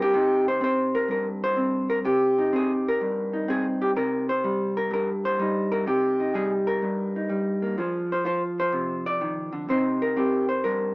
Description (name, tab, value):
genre	solo jazz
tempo	126 BPM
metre	4/4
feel	swing 68% on 8ths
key	C minor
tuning	A4 = 440 Hz
part	vintage hollow-body jazz guitar	solo	0.0-10.9 s	G2 to D5	-22 LUFS	equal	none
room	moderate club reverb, RT60 0.8 s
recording	small speaker sound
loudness	-22 LUFS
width	side -25 dB against mid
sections	0.1-10.9 A section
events	none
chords	0.1 Cm7; 7.8 Fm7; 9.7 Cm7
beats	| 0.13 0.61 1.08 1.56 | 2.04 2.52 3.00 3.47 | 3.95 4.43 4.91 5.38 | 5.86 6.34 6.82 7.29 | 7.77 8.25 8.72 9.20 | 9.68 10.15 10.63